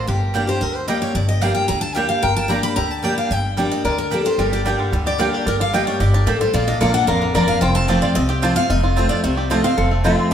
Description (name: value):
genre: bluegrass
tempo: 223 BPM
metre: 4/4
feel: straight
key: G minor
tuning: A4 = 440 Hz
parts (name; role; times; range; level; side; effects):
- picked steel-string acoustic guitar; melody; 0.0-10.3 s; G4 to B5; -22 LUFS; left 1 dB; none
- picked steel-string acoustic guitar; accompaniment; 0.0-10.3 s; F2 to G4; -21 LUFS; left 1 dB; none
- upright bass; bass; 0.0-10.3 s; F1 to D2; -23 LUFS; equal; none
- lap resonator guitar; second line; 0.1-10.3 s; F4 to C5; -26 LUFS; left 1 dB; none
- mandolin; stabs; 0.3-10.1 s; Bb3 to Bb5; -27 LUFS; right 6 dB; none
- bluegrass banjo; arpeggios; 4.4-10.3 s; D3 to G4; -26 LUFS; right 2 dB; none
room: wet stone room reverb, RT60 1.2 s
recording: band playing live in one room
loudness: -16 LUFS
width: side -9 dB against mid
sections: 0.0-10.3 A section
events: steel-string acoustic guitar solo 0.0-10.3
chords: 0.1 Gm; 6.5 Bb; 7.6 F